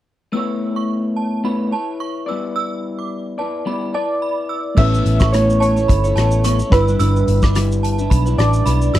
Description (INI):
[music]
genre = indie pop, bedroom pop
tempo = 108 BPM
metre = 4/4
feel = swing 55% on 16ths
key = unclear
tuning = A4 = 438 Hz
[part]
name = synth chime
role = second line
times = 0.3-9.0 s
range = A5 to E6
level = -27 LUFS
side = right 7 dB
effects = ensemble chorus, tremolo, analog chorus, slapback echo
[part]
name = electric guitar through a small old amp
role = accompaniment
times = 0.3-9.0 s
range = G3 to D5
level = -22 LUFS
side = left 2 dB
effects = wide subtle chorus, warbly pitch drift
[part]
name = soft electric-piano-like synth keys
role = melody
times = 3.9-9.0 s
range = B4 to E5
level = -21 LUFS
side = right 1 dB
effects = tremolo, lush chorus, slapback echo
[part]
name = reed electric piano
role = accompaniment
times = 4.7-9.0 s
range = G3 to B4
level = -24 LUFS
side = right 1 dB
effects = none
[part]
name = vintage muted picked electric bass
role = bass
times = 4.8-9.0 s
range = G1 to B1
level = -16 LUFS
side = equal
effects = none
[part]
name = loose indie drum kit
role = drums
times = 4.8-9.0 s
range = crash cymbal, hi-hat, kick drum, rim click, shaker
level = -18 LUFS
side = equal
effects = none
[sound]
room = little or no reverb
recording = dry, close 1970s-style studio recording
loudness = -15 LUFS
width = side -13 dB against mid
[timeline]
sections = 0.3-4.8 A section; 4.8-9.0 B section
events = none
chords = 0.3 Aadd9; 2.3 G6; 4.8 Aadd9; 6.7 G6